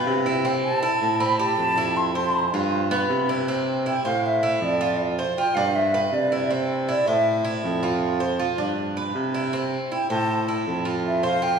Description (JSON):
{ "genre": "latin, Cuban son and guajira", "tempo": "158 BPM", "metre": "4/4", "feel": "straight", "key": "C major", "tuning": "A4 = 444 Hz", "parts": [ { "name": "breathy concert flute", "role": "melody", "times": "0.0-7.4, 9.9-11.6 s", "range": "D5 to C6", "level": "-24 LUFS", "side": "equal", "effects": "none" }, { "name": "Cuban tres", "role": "arpeggios", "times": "0.0-11.6 s", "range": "B3 to C5", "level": "-26 LUFS", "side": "right 2 dB", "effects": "none" }, { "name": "breathy baritone saxophone", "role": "bass", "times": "0.0-11.6 s", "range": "F2 to C3", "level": "-26 LUFS", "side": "equal", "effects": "none" } ], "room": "wet concert hall reverb, RT60 2.4 s", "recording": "recorded in a church or concert hall, studio reverb", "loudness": "-21 LUFS", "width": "side -6 dB against mid", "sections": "0.0-3.5 A section; 3.5-11.6 B section", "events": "flute solo 3.5-11.6", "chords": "0.5 C; 1.2 Am7; 2.0 F5; 2.7 G7; 3.5 C; 4.2 Am; 5.0 F5; 5.7 G; 6.5 C; 7.3 Am; 8.0 F5; 8.8 G; 9.5 C; 10.3 Am; 11.1 F5" }